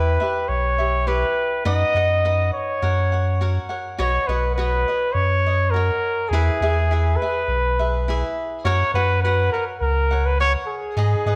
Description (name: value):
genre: mexican folk, mariachi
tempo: 103 BPM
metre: 4/4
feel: straight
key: B major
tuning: A4 = 439 Hz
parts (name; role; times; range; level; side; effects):
- mellow trumpet; melody; 0.0-11.4 s; G#4 to D#5; -24 LUFS; equal; none
- cavaquinho; accompaniment; 0.0-11.4 s; D#4 to F#5; -30 LUFS; equal; none
- pure sine sub bass; bass; 0.0-11.4 s; B1 to G#2; -24 LUFS; equal; none
room: moderate recital hall reverb, RT60 1.6 s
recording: none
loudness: -21 LUFS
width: mono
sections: 0.0-11.4 A section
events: none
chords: 0.0 Em; 1.7 B/F#; 2.8 F#; 4.0 Badd9; 6.3 E; 8.6 F#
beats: 0.49 1.07 | 1.65 2.23 2.82 3.41 | 3.99 4.58 5.16 5.74 | 6.33 6.91 7.48 8.06 | 8.64 9.22 9.80 10.38 | 10.96